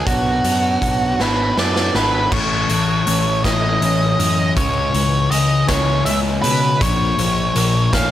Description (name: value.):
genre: quiet-loud alternative rock.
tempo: 53 BPM (dotted quarters).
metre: 6/8.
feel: straight.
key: unclear.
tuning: A4 = 441 Hz.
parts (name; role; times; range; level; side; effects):
octave-fuzz lead guitar; melody; 0.0-8.1 s; F#4 to E#5; -20 LUFS; equal; distortion, slapback echo, plate reverb.
electric guitar through a small old amp; arpeggios; 0.0-8.1 s; A2 to E4; -24 LUFS; right 3 dB; plate reverb.
fuzz picked electric bass; bass; 0.1-8.1 s; G#1 to B2; -22 LUFS; equal; overdrive.
raw garage drum kit; drums; 0.1-8.1 s; crash cymbal, hi-hat, kick drum, snare drum; -21 LUFS; equal; none.
thick fuzz guitar; riff; 2.3-8.1 s; A2 to C#4; -20 LUFS; left 5 dB; distortion.
room: moderate studio ambience, RT60 0.5 s.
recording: none.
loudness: -15 LUFS.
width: side -12 dB against mid.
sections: 0.0-2.3 A section; 2.3-8.1 B section.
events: drum fill 1.2-2.3.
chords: 0.1 Bm; 2.3 A; 4.6 C#m; 6.8 A#m.